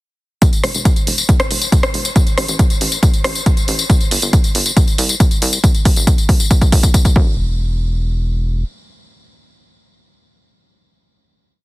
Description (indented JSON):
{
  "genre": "uplifting trance",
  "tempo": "138 BPM",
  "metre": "4/4",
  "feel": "straight",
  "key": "E minor",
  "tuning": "A4 = 439 Hz",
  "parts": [
    { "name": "big-room dance drum kit", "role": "drums", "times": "0.4-7.1 s", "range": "hi-hat, rim click, tambourine", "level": "-18 LUFS", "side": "left 1 dB", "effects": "overdrive, sidechain pumping on hats, high-pass filter on hats, studio reverb, sidechain pumping on perc, high-pass filter on perc, high-pass filter on snare" },
    { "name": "electronic kick drum", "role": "drums", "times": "0.4-7.2 s", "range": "none", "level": "-12 LUFS", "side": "equal", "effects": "studio reverb" },
    { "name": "tight sequencer bass", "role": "bass", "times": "0.6-8.6 s", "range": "E1 to C2", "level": "-21 LUFS", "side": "equal", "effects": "sidechain pumping, high-pass filter" }
  ],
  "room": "digital ambience",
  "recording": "dense, heavily limited modern master",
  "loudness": "-12 LUFS",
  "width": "side -20 dB against mid",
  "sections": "0.4-7.4 build; 7.4-10.9 final hit",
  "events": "build-up 0.4-7.4; drum fill 3.9-7.4",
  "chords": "none"
}